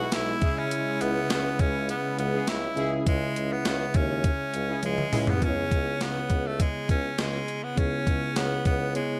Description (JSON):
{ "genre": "1980s-style pop", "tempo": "102 BPM", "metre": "4/4", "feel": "straight", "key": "C# minor", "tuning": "A4 = 440 Hz", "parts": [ { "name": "raspy tenor saxophone", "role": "melody", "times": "0.0-9.2 s", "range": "G#3 to F#4", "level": "-32 LUFS", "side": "equal", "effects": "none" }, { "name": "tine electric piano", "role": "accompaniment", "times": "0.0-9.2 s", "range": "B2 to E5", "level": "-35 LUFS", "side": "equal", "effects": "none" }, { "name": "brassy analog pad", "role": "sustained chords", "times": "0.0-5.4 s", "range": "B2 to E4", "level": "-38 LUFS", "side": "equal", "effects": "chorus" }, { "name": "analog synth brass", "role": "stabs", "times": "0.0-5.5 s", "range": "B3 to G#4", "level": "-39 LUFS", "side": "equal", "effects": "chorus, delay" }, { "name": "clear tuba", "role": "bass", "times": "0.0-9.0 s", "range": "B1 to D#2", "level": "-34 LUFS", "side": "equal", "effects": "none" }, { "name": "gated 80s digital drum machine", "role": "drums", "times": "0.1-9.1 s", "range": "hi-hat, kick drum, snare drum, toms", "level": "-29 LUFS", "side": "equal", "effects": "gated reverb, gated reverb snare" } ], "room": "light reverb, digital ambience", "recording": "none", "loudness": "-27 LUFS", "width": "mono", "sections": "0.0-5.4 A section; 5.4-9.2 B section", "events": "drum fill 4.8-5.4", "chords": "0.4 C#m; 5.4 C#m7", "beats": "0.13 | 0.71 1.30 1.89 2.48 | 3.07 3.66 4.24 4.83 | 5.42 6.01 6.60 7.19 | 7.77 8.36 8.95" }